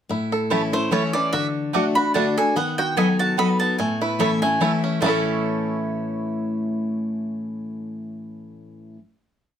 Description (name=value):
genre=bluegrass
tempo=146 BPM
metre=3/4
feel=swing 54% on 8ths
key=A major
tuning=A4 = 440 Hz
part: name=picked steel-string acoustic guitar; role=accompaniment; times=0.1-9.0 s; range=A2 to B4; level=-24 LUFS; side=left 3 dB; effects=none
part: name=bluegrass banjo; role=arpeggios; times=0.1-9.0 s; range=E3 to A4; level=-26 LUFS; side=right 2 dB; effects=none
part: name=mandolin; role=stabs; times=0.5-9.0 s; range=A3 to B5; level=-27 LUFS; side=right 6 dB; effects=none
part: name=mandolin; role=melody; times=0.7-8.9 s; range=B4 to B5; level=-24 LUFS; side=right 1 dB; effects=none
room=moderate studio reverb, RT60 0.5 s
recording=none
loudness=-20 LUFS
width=side -9 dB against mid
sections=0.1-5.0 A section; 5.0-7.5 final chord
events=none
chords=0.1 A; 1.3 D; 2.6 B/D#; 3.8 A